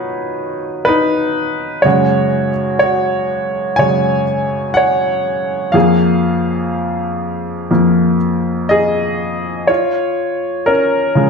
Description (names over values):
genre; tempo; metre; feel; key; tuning
pop; 61 BPM; 4/4; straight; F# major; A4 = 439 Hz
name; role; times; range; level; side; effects
bright baby grand piano; solo; 0.0-11.3 s; F2 to G#5; -13 LUFS; equal; none
room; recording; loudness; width
wet scoring stage reverb, RT60 1.6 s; none; -13 LUFS; side -5 dB against mid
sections
0.0-9.7 A section; 9.7-11.3 B section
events
grand piano solo 0.0-9.7, 9.7-11.3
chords
0.0 B; 1.9 F#sus2; 5.7 Fmadd11; 9.7 C#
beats
0.88 | 1.85 2.82 3.79 4.77 | 5.75 6.73 7.71 8.70 | 9.69 10.67